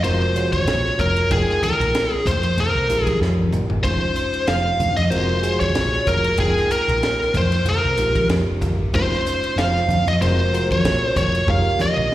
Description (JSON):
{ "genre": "electric jazz fusion", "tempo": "94 BPM", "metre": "4/4", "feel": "swing 55% on 16ths", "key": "F minor", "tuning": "A4 = 440 Hz", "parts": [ { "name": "biting lead guitar", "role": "melody", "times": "0.0-12.1 s", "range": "Ab4 to F5", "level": "-20 LUFS", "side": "equal", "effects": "overdrive, slapback echo, tape echo" }, { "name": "reed electric piano", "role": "accompaniment", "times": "0.0-12.1 s", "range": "C3 to G5", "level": "-26 LUFS", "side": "right 2 dB", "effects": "fast tremolo, slapback echo" }, { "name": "fingered electric bass", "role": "bass", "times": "0.0-12.1 s", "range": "F1 to F2", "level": "-22 LUFS", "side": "equal", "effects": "none" }, { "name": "crisp fusion drum kit", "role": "drums", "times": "0.0-12.1 s", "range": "hi-hat, kick drum, ride cymbal, snare drum, toms", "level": "-26 LUFS", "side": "equal", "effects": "none" }, { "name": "congas", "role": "percussion", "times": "0.0-12.0 s", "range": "none", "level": "-26 LUFS", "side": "left 1 dB", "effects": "none" } ], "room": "little or no reverb", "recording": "live gig heard through the venue's PA, recital hall reverb", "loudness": "-17 LUFS", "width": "side -14 dB against mid", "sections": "0.0-12.1 A section", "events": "drum fill 3.2-3.8, 11.5-12.1", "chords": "0.0 Gbmaj9#11/F; 1.3 Fm11; 3.8 Dbmaj9/F; 5.1 Gbmaj9#11/F; 6.4 Fm11; 8.9 Dbmaj9/F; 10.2 Gbmaj9#11/F; 11.5 Fm11", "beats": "0.04 0.67 | 1.31 1.94 2.58 3.21 | 3.85 4.48 5.12 5.76 | 6.39 7.03 7.66 8.30 | 8.94 9.57 10.21 10.84 | 11.47 12.11" }